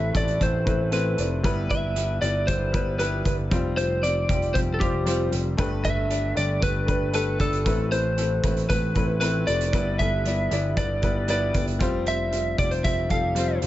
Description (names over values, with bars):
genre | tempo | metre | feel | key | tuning
piano-driven pop | 116 BPM | 4/4 | straight | E phrygian | A4 = 438 Hz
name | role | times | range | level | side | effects
lightly driven lead guitar | melody | 0.0-13.6 s | G4 to F5 | -27 LUFS | equal | none
clear upright piano | accompaniment | 0.0-13.7 s | G2 to D5 | -28 LUFS | left 2 dB | none
overdriven picked electric bass | bass | 0.0-13.7 s | F1 to A1 | -27 LUFS | equal | none
loose indie drum kit | drums | 0.1-13.7 s | hi-hat, kick drum | -27 LUFS | equal | none
room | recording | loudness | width
little or no reverb | nothing above 7.6 kHz | -21 LUFS | side -14 dB against mid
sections
0.0-13.7 A section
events
none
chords
0.0 Amadd9; 1.4 Em/G; 3.5 Fsus2; 5.6 Gadd9; 7.7 Amadd9; 9.7 Em/G; 11.8 Fsus2